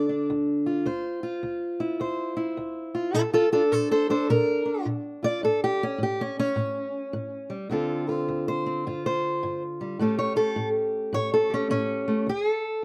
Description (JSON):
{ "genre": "acoustic country blues, solo or duo", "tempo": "105 BPM", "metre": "4/4", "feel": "swing 64% on 8ths", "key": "D minor", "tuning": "A4 = 437 Hz", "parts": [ { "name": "fingerpicked steel-string acoustic guitar", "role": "solo", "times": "0.0-12.8 s", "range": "D2 to D5", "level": "-26 LUFS", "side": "equal", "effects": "slapback echo" } ], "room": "little or no reverb", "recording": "recorded outdoors, with no room sound", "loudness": "-26 LUFS", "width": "mono", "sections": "0.0-12.3 A section", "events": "steel-string acoustic guitar solo 0.0-12.3", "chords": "0.0 Dm9; 3.1 Bbmaj7; 5.4 A7; 7.7 Dm7; 8.9 G5; 10.0 A7; 12.3 D5", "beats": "0.29 | 0.86 1.43 2.00 2.58 | 3.15 3.72 4.29 4.86 | 5.43 6.00 6.58 7.15 | 7.72 8.29 8.86 9.43 | 10.00 10.57 11.14 11.71 | 12.28" }